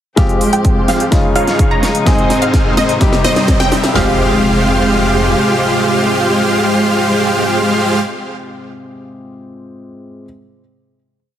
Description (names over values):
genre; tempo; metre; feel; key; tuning
EDM, festival progressive house; 127 BPM; 4/4; straight; F minor; A4 = 440 Hz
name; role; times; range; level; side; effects
warm baby grand piano; accompaniment; 0.2-10.3 s; Ab2 to Ab4; -20 LUFS; left 2 dB; sidechain pumping, digital delay
rich chamber string section; sustained chords; 0.2-8.0 s; C3 to G4; -21 LUFS; equal; vintage 12-bit sampler grit, sidechain pumping
wide unison pluck; arpeggios; 0.2-8.0 s; Eb5 to Bb5; -20 LUFS; right 1 dB; phaser, sidechain pumping, digital delay
dense compressed supersaw; riff; 0.2-8.0 s; G3 to Bb5; -14 LUFS; right 1 dB; sidechain pumping, low-pass filter, digital delay
detuned saw bass; bass; 0.2-5.3 s; F1 to Ab2; -23 LUFS; equal; none
big-room dance drum kit; drums; 0.2-4.1 s; kick drum, snare drum; -14 LUFS; equal; none
big-room dance drum kit; drums; 0.2-3.9 s; hi-hat, snare drum; -20 LUFS; equal; none
riser and impact; sound effects; 1.6-8.0 s; none; -26 LUFS; equal; none
room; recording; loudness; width
light reverb; heavily compressed radio sound; -11 LUFS; side -10 dB against mid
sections
0.2-4.0 build; 4.0-7.7 final chord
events
build-up 0.2-4.0; drum fill 0.2-4.0; filter sweep on supersaw synth 0.2-4.0; filter sweep on synth pluck 0.2-4.0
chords
0.2 Fmadd9; 1.1 Dbadd9; 2.1 Ab; 3.0 Cm; 4.0 Fmadd9